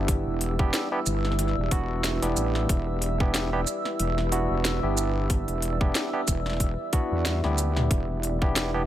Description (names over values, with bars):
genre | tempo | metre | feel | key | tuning
glitch hop | 92 BPM | 4/4 | swing 56% on 16ths | E minor | A4 = 440 Hz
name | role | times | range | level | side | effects
dark analog pad | sustained chords | 0.0-8.9 s | E4 to E6 | -33 LUFS | equal | chorus, phaser, sidechain pumping
barky tine electric piano | stabs | 0.0-8.8 s | B3 to G4 | -30 LUFS | right 1 dB | medium stereo tremolo, vintage 12-bit sampler grit, sidechain pumping, tape echo
wobble bass | bass | 0.0-8.9 s | E1 to E2 | -28 LUFS | equal | chorus, overdrive
deep dark ambient pad | texture | 0.0-8.9 s | E4 to B4 | -36 LUFS | right 2 dB | chorus, built-in reverb, sidechain pumping
drum and bass drum kit | drums | 0.1-8.7 s | hi-hat, shaker, snare drum, toms | -29 LUFS | equal | none
electronic kick drum | drums | 0.1-8.5 s | none | -24 LUFS | equal | none
room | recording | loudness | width
digital ambience | none | -23 LUFS | side -12 dB against mid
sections
0.0-8.9 A section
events
drum fill 7.3-7.9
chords
0.0 Em7